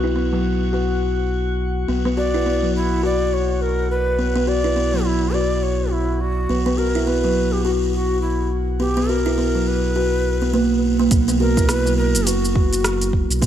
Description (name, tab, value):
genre	organic downtempo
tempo	104 BPM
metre	4/4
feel	swing 59% on 16ths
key	B harmonic minor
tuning	A4 = 440 Hz
part	buzzing kalimba	arpeggios	0.0-13.5 s	F#3 to F#4	-20 LUFS	left 1 dB	low-pass filter, analog delay
part	round analog bass	bass	0.0-13.5 s	F#1 to B1	-23 LUFS	right 1 dB	sidechain pumping
part	drifting glass-harmonics texture	texture	0.0-11.1 s	F#4 to F#5	-36 LUFS	left 1 dB	chorus, built-in reverb
part	breathy bright low Native American-style wooden flute	melody	2.2-13.1 s	E4 to D5	-24 LUFS	right 2 dB	analog delay
part	deep house drum kit	drums	11.1-13.5 s	hi-hat, rim click, shaker	-24 LUFS	equal	none
part	electronic kick drum	drums	11.1-13.5 s	none	-18 LUFS	right 1 dB	none
room	light reverb, digital ambience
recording	dry, gritty hardware recording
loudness	-17 LUFS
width	side -10 dB against mid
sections	0.0-11.1 A section; 11.1-13.5 B section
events	none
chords	0.0 B5; 6.5 N.C.